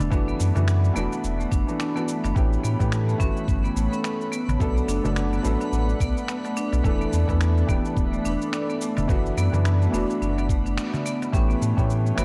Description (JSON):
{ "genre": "organic downtempo", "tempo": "107 BPM", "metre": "4/4", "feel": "swing 58% on 16ths", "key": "unclear", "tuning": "A4 = 440 Hz", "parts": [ { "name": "felt-muted upright piano", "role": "accompaniment", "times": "0.0-12.2 s", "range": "E3 to A4", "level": "-32 LUFS", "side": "equal", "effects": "sidechain pumping, tape echo" }, { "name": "warm analog pad", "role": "sustained chords", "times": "0.0-12.2 s", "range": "F#4 to B5", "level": "-37 LUFS", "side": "equal", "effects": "chorus, sidechain pumping" }, { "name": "marimba with hard mallets", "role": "arpeggios", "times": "0.0-12.2 s", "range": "A3 to D4", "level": "-31 LUFS", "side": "equal", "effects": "tape echo" }, { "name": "warm sub bass", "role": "bass", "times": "0.0-12.2 s", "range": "D1 to A2", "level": "-26 LUFS", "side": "equal", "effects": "none" }, { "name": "electronic shaker and finger snaps", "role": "drums", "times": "0.0-12.2 s", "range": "none", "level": "-38 LUFS", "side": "equal", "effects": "none" }, { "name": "darbuka", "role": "percussion", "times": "0.0-11.3 s", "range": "none", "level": "-36 LUFS", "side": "equal", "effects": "none" }, { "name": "electronic kick drum", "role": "drums", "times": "0.1-11.9 s", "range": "none", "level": "-27 LUFS", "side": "equal", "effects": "none" }, { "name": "twinkling granular texture", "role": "texture", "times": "3.1-11.3 s", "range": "B3 to B4", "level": "-42 LUFS", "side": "equal", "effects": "built-in reverb" } ], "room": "light reverb, small room ambience", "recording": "dark, warm production", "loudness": "-23 LUFS", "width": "mono", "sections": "0.0-11.3 A section", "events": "break 10.8-11.3; band accent 10.8", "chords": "0.1 D69; 2.4 A9; 4.6 Bm7; 6.8 E7sus4; 9.1 D69; 11.3 A9", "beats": "| 0.12 0.68 1.24 1.80 | 2.36 2.92 3.48 4.04 | 4.61 5.17 5.73 6.29 | 6.85 7.41 7.97 8.53 | 9.09 9.65 10.21 10.77 | 11.33 11.89" }